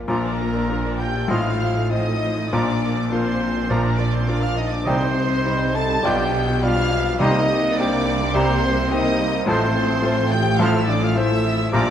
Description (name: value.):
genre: classical, romantic movement for piano and orchestra.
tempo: 94-109 BPM.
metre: 4/4.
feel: rubato.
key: Bb major.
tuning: A4 = 442 Hz.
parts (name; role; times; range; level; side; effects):
clear grand piano; melody; 0.0-11.9 s; A1 to F5; -23 LUFS; left 2 dB; none.
rich symphonic violin section; melody; 0.0-11.9 s; Bb5 to A6; -32 LUFS; left 2 dB; none.
dark symphonic violin section; second line; 0.0-11.9 s; Bb4 to A5; -29 LUFS; equal; none.
rich symphonic viola section; accompaniment; 0.0-11.9 s; F3 to D5; -32 LUFS; right 2 dB; none.
clear oboe; second line; 0.1-11.9 s; Bb4 to Eb5; -33 LUFS; right 2 dB; none.
mellow clarinet; second line; 0.1-11.9 s; Eb4 to A4; -32 LUFS; left 2 dB; none.
mellow silver concert flute; second line; 0.1-11.9 s; G5 to C6; -31 LUFS; left 1 dB; none.
mellow bassoon; accompaniment; 0.1-11.9 s; F3 to G3; -29 LUFS; right 3 dB; none.
mellow French horn section; sustained chords; 0.1-11.9 s; Bb3 to A4; -28 LUFS; left 5 dB; none.
warm trombone section; sustained chords; 0.1-11.9 s; F3 to Eb4; -31 LUFS; right 5 dB; none.
mellow trumpet; stabs; 0.1-11.9 s; Bb4 to A5; -27 LUFS; right 2 dB; none.
dark symphonic double bass section; bass; 0.1-11.9 s; A1 to C2; -29 LUFS; right 3 dB; none.
rich symphonic cello section; bass; 0.1-11.9 s; A2 to C3; -29 LUFS; right 3 dB; none.
timpani; percussion; 4.9-8.0 s; C3; -27 LUFS; right 2 dB; none.
room: moderate scoring stage reverb, RT60 1.7 s.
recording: none.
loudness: -18 LUFS.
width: side -9 dB against mid.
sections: 0.1-11.9 A section.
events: none.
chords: 0.1 Bb; 1.3 F7/A; 2.5 Bb; 4.9 Cm; 6.0 G7/B; 7.2 Cm7; 9.5 F/A.